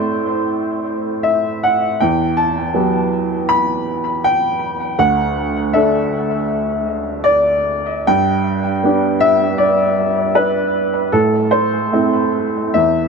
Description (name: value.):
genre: neoclassical minimalist piano.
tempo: 79 BPM.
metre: 4/4.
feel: uneven beats, rubato.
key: unclear.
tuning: A4 = 436 Hz.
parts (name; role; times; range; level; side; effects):
clear upright piano; solo; 0.0-13.1 s; D2 to B5; -14 LUFS; equal; tape echo.
room: light reverb.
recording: none.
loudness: -14 LUFS.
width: side -5 dB against mid.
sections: 0.0-13.1 A section.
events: none.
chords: 0.0 Am; 2.0 Emadd9; 5.0 Dsus2; 8.1 G; 11.1 Am.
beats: 0.48 1.25 | 2.01 2.77 3.51 4.24 | 4.98 5.74 6.49 7.25 | 8.07 8.83 9.58 10.35 | 11.12 11.90 12.74.